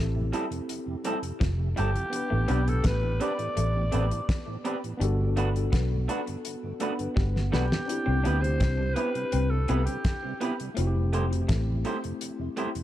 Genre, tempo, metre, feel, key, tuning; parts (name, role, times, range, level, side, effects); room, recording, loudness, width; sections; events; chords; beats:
lovers rock reggae; 83 BPM; 4/4; straight; A4 = 440 Hz
tine electric piano; accompaniment; 0.0-12.8 s; A3 to F#5; -35 LUFS; left 2 dB; medium stereo tremolo, tape echo
electric guitar through a small old amp; riff; 0.0-11.7 s; F3 to D4; -38 LUFS; left 5 dB; tape echo
vintage muted fingered electric bass; bass; 0.0-11.8 s; F1 to D2; -26 LUFS; equal
mellow tonewheel organ; accompaniment; 0.2-12.8 s; F2 to G4; -38 LUFS; right 3 dB; chorus vibrato, tape echo
electric guitar through a small old amp; stabs; 0.3-12.7 s; G3 to C5; -34 LUFS; right 2 dB
damped 70s drum kit; drums; 0.3-12.8 s; hi-hat, kick drum, snare drum; -29 LUFS; equal
growling alto saxophone; melody; 1.8-10.4 s; G4 to D5; -32 LUFS; equal; tape echo
small room ambience; dark, warm production; -25 LUFS; side -13 dB against mid
0.0-12.8 A section
drum fill 7.2-7.9
0.0 Fmaj9; 2.1 Am11; 5.0 Gmaj9; 7.9 Cmaj7; 10.8 Fmaj9
0.69 1.41 | 2.12 2.84 3.56 4.28 | 5.00 5.72 6.44 7.16 | 7.88 8.60 9.32 10.04 | 10.76 11.48 12.21